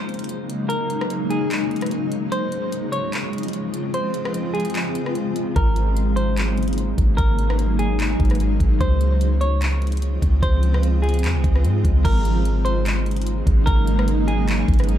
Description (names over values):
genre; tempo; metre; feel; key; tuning
hip hop, atmospheric cloud-rap; 148 BPM; 4/4; half-time; unclear; A4 = 437 Hz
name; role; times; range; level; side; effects
granular cloud pad; sustained chords; 0.0-15.0 s; Db3 to F4; -24 LUFS; left 1 dB; built-in reverb
smooth R&B drum kit; drums; 0.1-15.0 s; crash cymbal, handclaps, hi-hat, kick drum, rim click; -23 LUFS; equal; none
semi-hollow electric guitar; melody; 0.7-14.5 s; Ab4 to Db5; -28 LUFS; equal; wide subtle chorus, low-pass filter, digital delay
soft 808-style bass; bass; 5.6-15.0 s; Ab1 to Ab2; -19 LUFS; equal; none
room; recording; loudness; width
little or no reverb; dark, warm production; -18 LUFS; side -11 dB against mid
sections
0.0-12.0 A section; 12.0-15.0 B section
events
break 0.0-5.6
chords
0.0 Ab9sus4; 2.3 Dbmaj7; 5.6 Ab9sus4; 8.8 Dbmaj7; 12.0 Ab9sus4